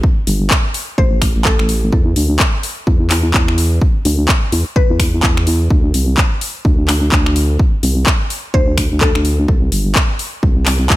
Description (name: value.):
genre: bass house.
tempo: 127 BPM.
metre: 4/4.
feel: swing 60% on 16ths.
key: unclear.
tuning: A4 = 441 Hz.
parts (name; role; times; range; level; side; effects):
vowel-sweep wobble bass; bass; 0.0-11.0 s; G1 to E2; -15 LUFS; equal; chorus, sidechain pumping.
electronic kick drum; drums; 0.0-11.0 s; none; -14 LUFS; equal; studio reverb.
house drum kit; drums; 0.3-11.0 s; finger snaps, handclaps, hi-hat; -18 LUFS; left 1 dB; overdrive, studio reverb.
mallet-like synth pluck; melody; 1.0-4.9, 8.5-9.5 s; A4 to C5; -22 LUFS; left 3 dB; chorus, digital delay.
room: digital ambience.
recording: none.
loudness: -12 LUFS.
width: side -16 dB against mid.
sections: 0.0-11.0 A section.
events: none.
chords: 0.0 N.C.; 5.7 D5; 9.5 C5.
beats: | 0.04 0.51 0.98 1.45 | 1.93 2.40 2.87 3.34 | 3.81 4.29 4.76 5.23 | 5.71 6.18 6.65 7.12 | 7.59 8.07 8.54 9.01 | 9.48 9.96 10.43 10.90.